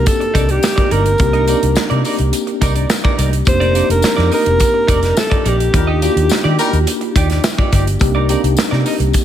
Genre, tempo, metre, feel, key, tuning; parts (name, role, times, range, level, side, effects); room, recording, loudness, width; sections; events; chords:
polished 1980s jazz-funk pop; 106 BPM; 4/4; straight; C dorian; A4 = 438 Hz
warm alto saxophone; melody; 0.0-7.2 s; G4 to C5; -18 LUFS; right 1 dB; ping-pong delay
mellow tine electric piano; accompaniment; 0.0-9.2 s; Bb3 to G4; -20 LUFS; left 1 dB; medium stereo tremolo, analog chorus
vintage muted fingered electric bass; bass; 0.0-9.1 s; F1 to Eb3; -16 LUFS; equal
clean electric guitar; riff; 0.1-9.2 s; Eb4 to Eb5; -23 LUFS; right 4 dB; wide subtle chorus
modern studio drum kit; drums; 0.1-9.2 s; hi-hat, kick drum, snare drum; -17 LUFS; equal; gated reverb
tambourine; percussion; 0.1-9.2 s; -29 LUFS; left 10 dB
warm horn section; second line; 5.7-6.8 s; G3 to Bb4; -21 LUFS; left 4 dB
studio ambience; -12 LUFS; side -10 dB against mid
0.0-9.2 A section
band accent 5.7-8.0
0.0 Cm9; 3.5 F13sus4; 5.7 Ebmaj7; 8.0 Cm9